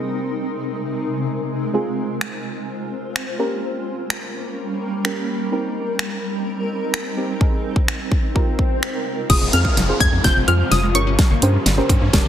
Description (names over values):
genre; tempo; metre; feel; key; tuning
dance-pop; 127 BPM; 4/4; straight; F minor; A4 = 441 Hz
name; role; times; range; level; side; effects
deep mellow chord stab; accompaniment; 0.0-12.3 s; C3 to Db5; -25 LUFS; right 2 dB; chorus, sidechain pumping
granular cloud pad; sustained chords; 0.0-12.3 s; C3 to C5; -25 LUFS; equal; built-in reverb, sidechain pumping
pop drum kit; drums; 2.2-12.2 s; crash cymbal, finger snaps, hi-hat, kick drum, snare drum; -19 LUFS; equal; soft clipping on snare
swell, riser and downlifter; sound effects; 8.2-12.3 s; none; -28 LUFS; equal; none
wide unison pluck; melody; 9.3-11.9 s; Db6 to Ab6; -22 LUFS; left 2 dB; analog chorus, tape echo
glassy wavetable pluck; arpeggios; 9.3-12.3 s; F3 to Db4; -30 LUFS; left 2 dB; chorus, phaser, sidechain pumping, tape echo
organ-like FM bass; bass; 9.3-12.3 s; F1 to G2; -19 LUFS; equal; sidechain pumping
room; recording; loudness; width
light reverb; dense, heavily limited modern master; -18 LUFS; side -10 dB against mid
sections
0.0-9.3 A section; 9.3-12.3 B section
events
swell 8.2-9.3; build-up 9.3-12.3; drum fill 9.3-12.3; riser 9.3-12.3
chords
0.0 Abadd9/C; 1.7 Fm; 3.4 Gdim; 5.5 Cm7; 7.4 Abadd9/C; 8.4 Ebadd9; 9.3 Fm; 11.0 Gdim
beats
0.32 0.80 1.27 | 1.74 2.21 2.69 3.16 | 3.63 4.10 4.57 5.05 | 5.52 5.99 6.46 6.94 | 7.41 7.88 8.35 8.83 | 9.30 9.77 10.24 10.72 | 11.19 11.66 12.13